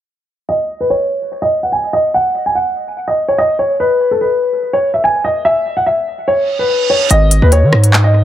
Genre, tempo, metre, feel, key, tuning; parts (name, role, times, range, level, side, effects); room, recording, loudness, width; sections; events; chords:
hip hop, drill; 145 BPM; 4/4; half-time; G# minor; A4 = 440 Hz
dark concert grand piano; melody; 0.5-8.2 s; A4 to G#5; -13 LUFS; equal; low-pass filter, analog delay
reverse cymbal; sound effects; 6.5-7.1 s; -18 LUFS; right 7 dB
distorted 808-style bass; bass; 7.1-8.2 s; G#1 to D#3; -9 LUFS; equal; distortion
drill drum kit; drums; 7.1-8.0 s; handclaps, hi-hat, rim click; -15 LUFS; left 1 dB
light reverb, digital ambience; echo-heavy mix; -11 LUFS; side -11 dB against mid
0.5-7.1 A section; 7.1-8.2 B section
filter sweep on grand piano 0.5-7.1; reverse cymbal 6.5-7.1
0.5 N.C.; 7.1 G#5